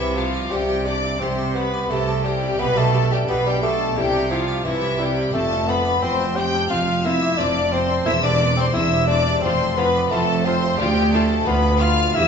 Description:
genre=classical, baroque-style concerto movement with solo episodes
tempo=88 BPM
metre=4/4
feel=straight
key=C major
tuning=A4 = 440 Hz
part: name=rich chamber violin section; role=melody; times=0.0-12.3 s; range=E5 to G6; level=-26 LUFS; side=left 5 dB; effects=none
part: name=warm bassoon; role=melody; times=0.0-12.3 s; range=E3 to G4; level=-23 LUFS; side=left 2 dB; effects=none
part: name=rich chamber violin section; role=second line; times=0.0-12.3 s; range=E4 to G5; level=-25 LUFS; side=left 2 dB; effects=none
part: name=harpsichord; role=accompaniment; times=0.0-12.3 s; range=D2 to D5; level=-30 LUFS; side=right 1 dB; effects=none
part: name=rich chamber cello section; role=bass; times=0.0-12.3 s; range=D2 to C3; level=-25 LUFS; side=right 3 dB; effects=none
part: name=rich chamber double bass section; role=bass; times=0.0-12.3 s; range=E1 to D2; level=-25 LUFS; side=right 2 dB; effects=none
part: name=warm chamber viola section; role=accompaniment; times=0.2-12.2 s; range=C4 to G4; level=-31 LUFS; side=equal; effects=none
room=wet recital hall reverb, RT60 1.6 s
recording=recorded in a church or concert hall, nothing above 7.8 kHz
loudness=-17 LUFS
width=side -6 dB against mid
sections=0.0-12.3 A section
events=none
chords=0.0 C; 2.6 G/B; 4.0 C; 5.3 F; 8.1 C/E; 9.4 F; 10.8 Bdim/D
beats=0.52 1.21 1.90 | 2.59 3.28 3.97 4.65 | 5.34 6.03 6.71 7.39 | 8.07 8.75 9.43 10.11 | 10.79 11.47 12.15

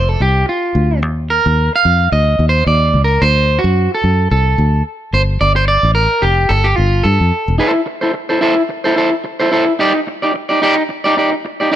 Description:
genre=disco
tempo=109 BPM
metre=4/4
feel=swing 56% on 16ths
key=unclear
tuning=A4 = 441 Hz
part: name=electric guitar at the edge of break-up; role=accompaniment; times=0.0-11.8 s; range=Eb4 to F5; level=-14 LUFS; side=right 1 dB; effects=none
part: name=fingered electric bass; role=bass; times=0.0-7.6 s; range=E1 to G2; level=-14 LUFS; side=left 1 dB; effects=none
room=light reverb, digital ambience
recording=none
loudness=-12 LUFS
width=side -11 dB against mid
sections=0.0-7.6 A section; 7.6-11.8 B section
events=clean electric guitar solo 0.0-7.6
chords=0.0 F5; 1.0 Db69 (rootless); 3.2 D7; 5.1 Bbmaj13 (rootless); 7.6 Am/E; 9.8 Ebmaj7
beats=0.47 | 1.02 1.57 2.12 2.66 | 3.21 3.76 4.31 4.85 | 5.40 5.95 6.50 7.05 | 7.60 8.15 8.70 9.25 | 9.80 10.35 10.90 11.45

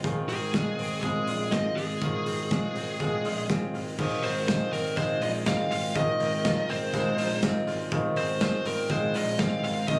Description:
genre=jangly indie pop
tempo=122 BPM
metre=4/4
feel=straight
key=Ab major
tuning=A4 = 442 Hz
part: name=warm upright piano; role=accompaniment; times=0.0-10.0 s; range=C4 to Eb5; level=-36 LUFS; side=equal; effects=none
part: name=electric guitar through a small old amp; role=arpeggios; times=0.0-10.0 s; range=Eb3 to F4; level=-35 LUFS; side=equal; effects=slapback echo
part: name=picked electric bass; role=bass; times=0.0-10.0 s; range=Ab1 to Bb1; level=-36 LUFS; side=equal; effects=none
part: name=loose indie drum kit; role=drums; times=0.0-10.0 s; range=crash cymbal, hi-hat, kick drum, snare drum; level=-34 LUFS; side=equal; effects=none
part: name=fuzz lead guitar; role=melody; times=0.3-10.0 s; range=Ab4 to F5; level=-33 LUFS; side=equal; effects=distortion
part: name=tambourine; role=percussion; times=4.2-9.8 s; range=none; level=-49 LUFS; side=equal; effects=none
room=light reverb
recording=recorded on a phone in the room, club reverb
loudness=-28 LUFS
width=mono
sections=0.0-4.0 A section; 4.0-10.0 B section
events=none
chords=0.0 Ab6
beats=| 0.04 0.54 1.03 1.53 | 2.02 2.51 3.00 3.50 | 3.99 4.48 4.97 5.46 | 5.96 6.45 6.94 7.43 | 7.92 8.41 8.90 9.39 | 9.88

